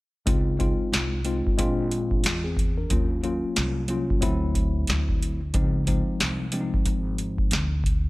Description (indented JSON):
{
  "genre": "hip hop, jazz-hop",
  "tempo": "91 BPM",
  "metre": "4/4",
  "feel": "swing 58% on 16ths",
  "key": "Db major",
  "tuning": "A4 = 437 Hz",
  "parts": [
    { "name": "mellow tine electric piano", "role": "accompaniment", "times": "0.3-7.7 s", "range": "F3 to Bb4", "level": "-28 LUFS", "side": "left 2 dB", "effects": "medium stereo tremolo" },
    { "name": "upright bass", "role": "bass", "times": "0.3-8.1 s", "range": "Ab1 to Fb2", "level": "-28 LUFS", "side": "equal", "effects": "none" },
    { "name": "booming analog drum machine", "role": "drums", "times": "0.3-8.0 s", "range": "hi-hat, kick drum, snare drum", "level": "-25 LUFS", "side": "equal", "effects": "none" }
  ],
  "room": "light reverb",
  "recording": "none",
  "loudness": "-22 LUFS",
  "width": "side -20 dB against mid",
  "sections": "0.3-8.1 A section",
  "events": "none",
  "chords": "0.3 Dbmaj7; 1.6 Bb7; 2.9 Ebm7; 4.2 D9; 5.5 Dbmaj7"
}